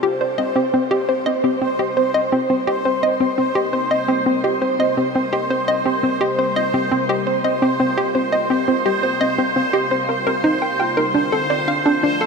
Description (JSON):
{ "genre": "ambient, sequencer-driven space music", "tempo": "85 BPM", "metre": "4/4", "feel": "straight", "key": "C dorian", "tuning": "A4 = 441 Hz", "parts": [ { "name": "lush unison pad", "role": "sustained chords", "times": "0.0-12.3 s", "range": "C3 to Bb4", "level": "-30 LUFS", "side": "left 1 dB", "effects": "chorus, phaser" }, { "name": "warbly dusty pluck", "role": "arpeggios", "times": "0.0-12.1 s", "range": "G3 to C5", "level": "-33 LUFS", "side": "moving between left 4 dB and right 3 dB", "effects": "none" }, { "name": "hollow square pluck", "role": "riff", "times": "0.0-12.3 s", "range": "C4 to G5", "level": "-18 LUFS", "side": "equal", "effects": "chorus, cassette tape, tape echo" }, { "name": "bubbling stepped-filter texture", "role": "texture", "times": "0.0-12.3 s", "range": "C5", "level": "-21 LUFS", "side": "right 1 dB", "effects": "chorus, built-in reverb" } ], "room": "wet shimmer reverb, RT60 9.0 s", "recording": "none", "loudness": "-16 LUFS", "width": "side -4 dB against mid", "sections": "0.0-12.3 A section", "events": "fade-in on analog synth pad 0.0-12.3", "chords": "0.0 Cm7; 11.1 Dm" }